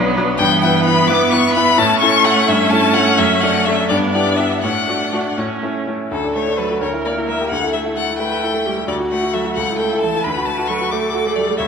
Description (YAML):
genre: quick classical-period movement for piano quartet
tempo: 80-91 BPM (dotted quarters)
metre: 6/8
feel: rubato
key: D major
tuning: A4 = 440 Hz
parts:
  - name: rich cello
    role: second line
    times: 0.0-11.7 s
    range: E3 to B3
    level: -23 LUFS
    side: right 5 dB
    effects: none
  - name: bright grand piano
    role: accompaniment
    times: 0.0-11.7 s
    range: B1 to B4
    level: -19 LUFS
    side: equal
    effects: none
  - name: rich viola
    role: accompaniment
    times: 0.0-11.7 s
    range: B3 to C#5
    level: -22 LUFS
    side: right 3 dB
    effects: none
  - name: rich violin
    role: melody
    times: 0.4-11.7 s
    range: A4 to D6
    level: -18 LUFS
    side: left 6 dB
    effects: none
room: wet scoring stage reverb, RT60 1.6 s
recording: minimal, uncompressed stereo recording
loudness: -14 LUFS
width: side -6 dB against mid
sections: 0.0-6.1 A section; 6.1-11.7 B section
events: none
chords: 0.4 Em/G; 1.8 A; 2.5 A7/G; 3.2 D/F#; 3.9 Em7/G; 4.6 D/A; 5.4 A; 6.1 D; 6.8 Gm6/D; 7.5 A5/D; 8.9 D; 9.6 A/C#; 10.2 D